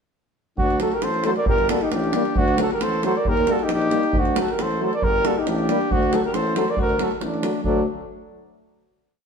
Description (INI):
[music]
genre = balkan folk, Balkan brass band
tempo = 136 BPM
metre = 2/4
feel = swing 54% on 16ths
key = D phrygian dominant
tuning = A4 = 440 Hz
[part]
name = mellow cornet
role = melody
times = 0.6-7.8 s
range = D4 to D5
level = -24 LUFS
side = right 2 dB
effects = none
[part]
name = mellow alto saxophone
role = second line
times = 0.6-7.8 s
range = A3 to Bb4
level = -26 LUFS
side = left 3 dB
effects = none
[part]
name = warm tuba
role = bass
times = 0.6-7.8 s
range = G1 to Eb2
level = -27 LUFS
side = equal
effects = none
[part]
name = davul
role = percussion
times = 0.6-7.8 s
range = none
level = -26 LUFS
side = right 1 dB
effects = none
[part]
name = brilliant trombone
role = accompaniment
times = 0.8-7.8 s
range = F#3 to G3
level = -29 LUFS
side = right 4 dB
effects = none
[part]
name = mellow trombone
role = accompaniment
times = 0.8-7.8 s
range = A3 to Bb3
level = -29 LUFS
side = left 5 dB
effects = none
[sound]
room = wet stone room reverb, RT60 1.5 s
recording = band playing live in one room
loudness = -19 LUFS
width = side -6 dB against mid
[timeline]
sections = 0.6-7.6 A section; 7.6-8.5 final chord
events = none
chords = 0.6 D; 1.5 Gm; 2.4 D; 3.3 Eb; 4.1 D; 5.0 Gm; 5.9 D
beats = | 0.58 1.02 | 1.47 1.92 | 2.37 2.81 | 3.26 3.70 | 4.15 4.59 | 5.03 5.47 | 5.91 6.34 | 6.78 7.21 | 7.64